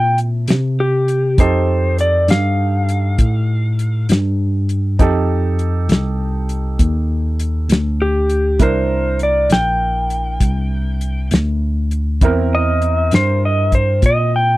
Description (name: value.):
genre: slow blues.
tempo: 66 BPM (dotted quarters).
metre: 12/8.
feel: straight.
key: unclear.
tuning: A4 = 441 Hz.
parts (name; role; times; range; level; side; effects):
clean lap steel guitar; melody; 0.0-14.6 s; G4 to G5; -18 LUFS; equal; none.
clear upright piano; accompaniment; 0.0-14.6 s; C4 to A5; -24 LUFS; right 5 dB; none.
tine electric piano; bass; 0.0-14.6 s; Bb1 to C3; -17 LUFS; equal; medium stereo tremolo.
warm soul drum kit; drums; 0.2-14.2 s; hi-hat, kick drum, snare drum; -15 LUFS; equal; none.
room: little or no reverb.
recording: dry, close 1970s-style studio recording.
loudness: -14 LUFS.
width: side -18 dB against mid.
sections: 0.0-14.6 A section.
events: none.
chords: 0.0 C7; 1.4 F9; 8.6 C9.